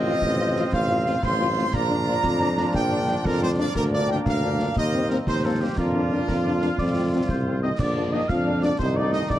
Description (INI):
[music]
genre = military-style march for wind band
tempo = 119 BPM (dotted quarters)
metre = 6/8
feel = straight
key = Bb major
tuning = A4 = 438 Hz
[part]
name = clear trumpet section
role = melody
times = 0.0-9.4 s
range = F4 to C6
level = -28 LUFS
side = right 3 dB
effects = tape echo
[part]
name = mellow large flute ensemble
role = second line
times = 0.0-7.6 s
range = F4 to C6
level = -32 LUFS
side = left 1 dB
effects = none
[part]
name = warm woodwind section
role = second line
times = 0.0-9.4 s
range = F4 to F5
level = -33 LUFS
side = left 1 dB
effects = none
[part]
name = warm trombone section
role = sustained chords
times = 0.0-9.4 s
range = F3 to Eb4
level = -30 LUFS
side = left 1 dB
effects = none
[part]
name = warm tuba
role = bass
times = 0.0-9.4 s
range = A1 to F2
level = -25 LUFS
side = equal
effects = none
[part]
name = warm French horn section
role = accompaniment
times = 0.1-9.2 s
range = F3 to F4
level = -30 LUFS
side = left 3 dB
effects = none
[part]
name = concert snare drum, concert bass drum and clash cymbals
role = drums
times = 0.2-9.4 s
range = none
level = -29 LUFS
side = equal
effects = none
[part]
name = warm euphonium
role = second line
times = 7.6-9.4 s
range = C3 to F3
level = -32 LUFS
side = right 2 dB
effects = none
[sound]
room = moderate spring reverb, RT60 1.8 s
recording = dark, warm production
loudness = -20 LUFS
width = side -12 dB against mid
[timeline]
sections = 0.0-7.8 A section; 7.8-9.4 B section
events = none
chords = 0.0 F7/A; 1.7 Bb; 3.8 Bb/D; 4.8 Cm7/Eb; 5.8 Bb/F; 6.8 F; 7.8 Bb; 8.8 Adim/C